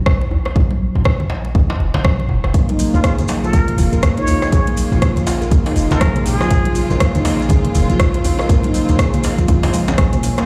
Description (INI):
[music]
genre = afro house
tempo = 121 BPM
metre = 4/4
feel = swing 59% on 16ths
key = Bb minor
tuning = A4 = 437 Hz
[part]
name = warm 808-style bass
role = bass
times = 0.0-10.2 s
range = F1 to Bb1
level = -22 LUFS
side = equal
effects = sidechain pumping
[part]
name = afro-pop drum kit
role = drums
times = 0.1-10.5 s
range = hi-hat, rim click, toms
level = -25 LUFS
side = equal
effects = none
[part]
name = electronic kick drum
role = drums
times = 0.1-10.1 s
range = none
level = -18 LUFS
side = equal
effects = overdrive
[part]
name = congas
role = percussion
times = 0.2-10.2 s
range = none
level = -28 LUFS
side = equal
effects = none
[part]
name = djembe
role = percussion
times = 0.2-10.5 s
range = none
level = -26 LUFS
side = equal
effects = none
[part]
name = clear symphonic string section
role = sustained chords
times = 2.5-10.4 s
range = Db3 to F4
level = -28 LUFS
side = equal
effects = sidechain pumping
[part]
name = handpan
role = arpeggios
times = 2.5-10.5 s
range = F3 to Bb4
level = -23 LUFS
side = equal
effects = sidechain pumping, digital delay
[part]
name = maracas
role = percussion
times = 2.5-10.5 s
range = none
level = -36 LUFS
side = equal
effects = none
[part]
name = trumpet with plunger mute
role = melody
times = 2.9-6.8 s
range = F4 to Db5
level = -27 LUFS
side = equal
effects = digital delay
[sound]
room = light reverb, small room ambience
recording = played on a big sound system in a bare room, large studio reverb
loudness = -16 LUFS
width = mono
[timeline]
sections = 0.0-10.5 A section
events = none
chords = 0.0 Bbm7